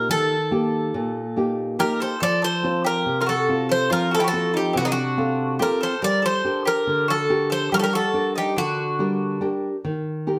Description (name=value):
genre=greek folk, Greek bouzouki band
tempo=142 BPM (eighths)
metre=9/8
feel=straight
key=unclear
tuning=A4 = 439 Hz
part: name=Greek bouzouki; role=melody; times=0.0-9.5 s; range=Eb4 to D5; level=-25 LUFS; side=equal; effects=plate reverb
part: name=nylon-string guitar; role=accompaniment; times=0.0-10.4 s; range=Bb2 to F5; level=-26 LUFS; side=equal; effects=none
part: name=mandolin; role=second line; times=1.8-9.5 s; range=B3 to Bb4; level=-31 LUFS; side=equal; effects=none
room=wet studio reverb, RT60 0.6 s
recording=heard from further back in the room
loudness=-22 LUFS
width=mono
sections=0.0-10.4 A section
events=none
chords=0.0 Eb; 2.2 F; 6.0 Gm; 9.8 Eb